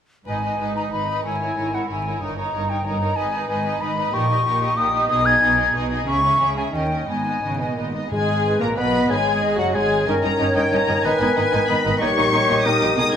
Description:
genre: classical, dramatic, fast romantic movement for symphony orchestra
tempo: 185 BPM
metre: 3/4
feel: rubato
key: G# minor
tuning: A4 = 440 Hz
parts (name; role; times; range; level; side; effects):
- warm symphonic violin section; melody; 0.3-13.2 s; C#5 to D#6; -26 LUFS; left 4 dB; none
- silver concert flute; second line; 0.3-13.2 s; A#4 to G#6; -22 LUFS; left 1 dB; none
- warm symphonic violin section; second line; 0.3-13.2 s; D#4 to D#5; -29 LUFS; left 4 dB; none
- warm symphonic viola section; accompaniment; 0.3-13.2 s; F#3 to E4; -27 LUFS; right 3 dB; none
- dark symphonic cello section; bass; 0.3-13.2 s; F#2 to D#3; -28 LUFS; right 2 dB; none
- dark symphonic double bass section; bass; 0.3-13.0 s; F#1 to D#2; -29 LUFS; right 1 dB; none
- bright clarinet; second line; 8.1-13.2 s; F#4 to C#5; -27 LUFS; left 1 dB; none
- mellow bassoon; accompaniment; 8.1-13.2 s; D#3 to B3; -24 LUFS; equal; none
- mellow French horn section; sustained chords; 8.1-13.2 s; F#3 to D#4; -27 LUFS; left 1 dB; none
- timpani; percussion; 8.1-8.6 s; G#2; -31 LUFS; left 1 dB; none
room: wet recital hall reverb, RT60 1.5 s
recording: minimal, uncompressed stereo recording, vinyl crackle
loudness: -18 LUFS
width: side -8 dB against mid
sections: 0.3-8.1 A section; 8.1-13.2 A section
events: none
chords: 0.3 G#m; 1.3 A#m7b5/G#; 2.2 D#7/G; 3.2 G#m; 4.1 D#7/A#; 5.1 G#m/B; 6.1 C#m; 6.7 D#7; 7.1 G#m; 9.1 F#sus2; 10.1 D#7/G; 11.1 G#m; 12.0 D#7/A#

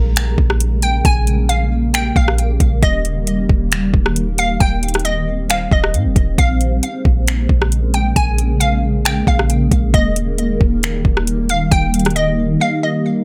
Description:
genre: hip hop, atmospheric cloud-rap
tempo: 135 BPM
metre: 4/4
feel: half-time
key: Bb dorian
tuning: A4 = 440 Hz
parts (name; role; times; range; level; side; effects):
- shimmering ambient pad; sustained chords; 0.0-13.2 s; Db3 to C4; -23 LUFS; equal; chorus, built-in reverb, phaser, sidechain pumping
- clean 808-style bass; bass; 0.0-12.6 s; Eb1 to Bb2; -20 LUFS; equal; none
- smooth R&B drum kit; drums; 0.2-12.3 s; finger snaps, hi-hat, kick drum, rim click; -18 LUFS; equal; none
- glassy wavetable pluck; melody; 0.8-13.2 s; Eb5 to Ab5; -23 LUFS; equal; chorus, digital delay
room: light reverb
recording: none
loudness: -16 LUFS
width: mono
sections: 0.0-13.2 A section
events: drums muted 12.6-13.2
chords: 0.0 Bbm7; 2.8 Eb; 6.4 Bbm7; 9.9 Eb

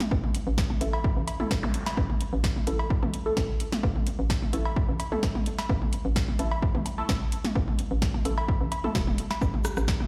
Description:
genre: minimal techno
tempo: 129 BPM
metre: 4/4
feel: straight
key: unclear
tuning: A4 = 440 Hz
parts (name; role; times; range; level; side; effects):
- booming analog drum machine; drums; 0.0-10.0 s; hi-hat, snare drum; -37 LUFS; equal; none
- garage drum kit; percussion; 0.0-10.1 s; cowbell, rim click, toms, woodblock; -36 LUFS; equal; delay
- hollow knocking FM bass; bass; 0.1-10.0 s; E1 to A1; -33 LUFS; equal; sidechain pumping
- electronic kick drum; drums; 0.1-10.0 s; none; -31 LUFS; equal; overdrive
- filtered dub chord stab; stabs; 0.8-8.9 s; A3 to A4; -37 LUFS; equal; phaser, analog chorus, delay
- zap; sound effects; 1.6-1.7 s; none; -40 LUFS; equal; none
- tube shaker; percussion; 9.4-10.0 s; none; -46 LUFS; equal; none
- bubbling stepped-filter texture; texture; 9.4-10.1 s; G4; -44 LUFS; equal; none
room: light reverb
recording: played on a big sound system in a bare room, large studio reverb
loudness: -27 LUFS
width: mono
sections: 0.0-10.1 A section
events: none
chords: 0.0 A5

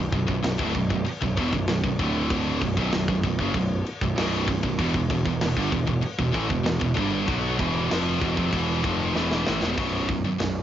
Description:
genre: heavy metal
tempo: 96 BPM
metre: 4/4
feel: straight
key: B minor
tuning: A4 = 440 Hz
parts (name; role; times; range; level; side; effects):
- scooped high-gain guitar; riff; 0.0-10.6 s; B1 to B3; -29 LUFS; left 9 dB; distortion
- scooped high-gain guitar; riff; 0.0-10.6 s; B1 to B3; -28 LUFS; right 7 dB; distortion
- fuzz picked electric bass; bass; 0.0-10.6 s; B0 to B1; -27 LUFS; equal; overdrive
- tight metal drum kit; drums; 0.1-10.5 s; crash cymbal, hi-hat, kick drum, snare drum; -29 LUFS; equal; none
room: light reverb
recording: home recording on cassette, nothing above 7.5 kHz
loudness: -22 LUFS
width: side -11 dB against mid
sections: 0.0-9.8 A section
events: drum fill 9.2-9.8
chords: 0.0 Bm; 2.0 D5; 2.6 B5; 4.8 E5; 9.8 B5

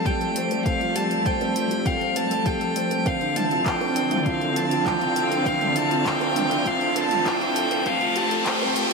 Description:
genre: piano and strings electronica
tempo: 100 BPM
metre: 4/4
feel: straight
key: D minor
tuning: A4 = 441 Hz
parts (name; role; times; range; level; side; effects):
- rich violin; melody; 0.0-8.9 s; F5 to A5; -24 LUFS; equal; ping-pong delay
- rich studio string section; sustained chords; 0.0-8.9 s; D3 to F5; -28 LUFS; left 1 dB; sidechain pumping, low-pass filter
- dark baby grand piano; riff; 0.0-8.9 s; C4 to C5; -26 LUFS; right 2 dB; ping-pong delay
- warm sub bass; bass; 0.0-8.9 s; none; barely audible; none; none
- deep house drum kit; drums; 0.1-8.9 s; handclaps, hi-hat, toms; -30 LUFS; left 1 dB; none
- electronic kick drum; drums; 0.1-8.6 s; none; -28 LUFS; equal; none
- riser; sound effects; 5.5-8.9 s; none; -31 LUFS; equal; none
room: wet cathedral reverb, RT60 4.6 s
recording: dreamy mix soaked in reverb, high-pass filter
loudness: -20 LUFS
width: side -3 dB against mid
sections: 0.0-8.9 A section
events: build-up 0.0-8.9; filter sweep on string section 0.0-8.9; riser 5.5-8.9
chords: 0.0 Fadd9/D; 3.1 Dm9; 7.9 Fadd9/D

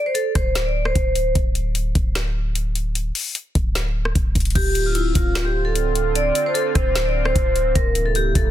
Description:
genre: hip hop, trap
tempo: 150 BPM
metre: 4/4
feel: half-time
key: D minor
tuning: A4 = 440 Hz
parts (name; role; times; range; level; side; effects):
- vibraphone with medium hard mallets; melody; 0.0-1.3, 4.6-8.5 s; E4 to D5; -21 LUFS; right 1 dB; none
- trap drum kit; drums; 0.1-8.4 s; crash cymbal, hi-hat, kick drum, rim click, snare drum; -22 LUFS; equal; none
- clean 808-style bass; bass; 0.4-8.5 s; D1; -22 LUFS; equal; none
- sweeping resonant pad; sustained chords; 4.6-8.5 s; C3 to F4; -28 LUFS; right 2 dB; chorus
room: little or no reverb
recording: dense, heavily limited modern master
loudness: -18 LUFS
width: side -12 dB against mid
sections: 0.0-4.6 A section; 4.6-8.5 B section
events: none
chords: 0.0 D5; 1.4 N.C.; 4.6 Dm7; 7.8 C7/D

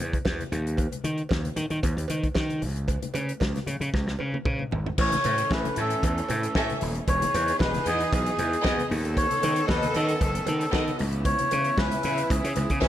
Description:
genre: disco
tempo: 115 BPM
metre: 4/4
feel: straight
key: unclear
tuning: A4 = 440 Hz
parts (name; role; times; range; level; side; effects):
- gritty slap bass; bass; 0.0-12.9 s; D#1 to D#3; -28 LUFS; equal; overdrive
- warm soul drum kit; drums; 0.0-12.9 s; crash cymbal, hi-hat, kick drum, snare drum, toms; -29 LUFS; equal; none
- congas; percussion; 0.1-12.9 s; none; -38 LUFS; left 6 dB; none
- cowbell; percussion; 0.2-12.9 s; none; -38 LUFS; right 7 dB; none
- melodica; melody; 5.0-12.9 s; G#4 to C#5; -27 LUFS; equal; none
- clear studio string section; sustained chords; 5.0-12.9 s; C#3 to A4; -32 LUFS; right 1 dB; none
- warm studio violin section; second line; 5.5-12.9 s; B3 to E5; -32 LUFS; equal; none
room: small room ambience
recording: none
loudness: -23 LUFS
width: side -12 dB against mid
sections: 0.0-5.0 A section; 5.0-12.9 B section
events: drum fill 3.9-5.0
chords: 0.0 N.C.; 2.6 C#5; 5.0 A; 7.1 Emaj7; 8.9 B7/D#; 11.0 C#m7

